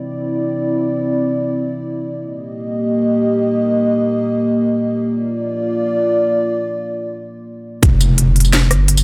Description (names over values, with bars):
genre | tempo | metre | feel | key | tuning
half-time drum and bass | free time | none | none | unclear | A4 = 438 Hz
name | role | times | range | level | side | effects
dark analog pad | sustained chords | 0.0-7.8 s | Bb3 to Eb5 | -19 LUFS | equal | chorus, sidechain pumping
long sustained 808-style bass | bass | 7.8-9.0 s | F1 to G1 | -15 LUFS | equal | none
drum and bass drum kit | drums | 7.8-9.0 s | hi-hat, rim click, snare drum, tambourine | -19 LUFS | equal | none
electronic kick drum | drums | 7.8-7.9 s | none | -13 LUFS | equal | none
impact | sound effects | 7.8-9.0 s | none | -23 LUFS | equal | none
room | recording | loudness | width
moderate lush hall reverb, RT60 1.7 s, digital ambience | none | -17 LUFS | mono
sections
0.0-7.8 A section; 7.8-9.0 B section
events
filter sweep on analog synth pad 0.0-7.8; drop 7.8-9.0; impact 7.8-9.0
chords
0.0 Cadd9; 2.2 Eb; 5.0 Bb; 7.8 Fsus2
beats
free time